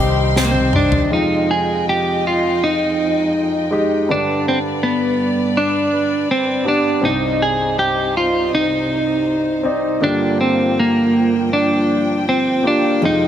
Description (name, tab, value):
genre	pop ballad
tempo	80 BPM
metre	4/4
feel	straight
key	unclear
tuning	A4 = 440 Hz
part	clean electric guitar	melody	0.0-13.3 s	Bb3 to Ab4	-16 LUFS	right 1 dB	none
part	warm concert grand piano	accompaniment	0.0-13.3 s	C2 to D5	-22 LUFS	equal	none
part	warm studio string section	sustained chords	0.0-13.3 s	F2 to C6	-24 LUFS	left 1 dB	none
part	flamenco guitar	arpeggios	0.0-1.7, 13.0-13.3 s	F2 to G4	-30 LUFS	left 6 dB	none
part	fingered electric bass	bass	0.0-1.1 s	C2	-19 LUFS	equal	none
part	unplugged drum kit	drums	0.4-1.1 s	snare drum, toms	-20 LUFS	equal	none
room	light reverb, small room ambience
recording	none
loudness	-15 LUFS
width	side -10 dB against mid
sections	0.0-1.1 A section; 1.1-13.3 B section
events	drum fill 0.3-1.1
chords	0.0 Cm; 1.1 Fm7; 4.1 G; 7.0 Cmadd9; 10.0 Gm7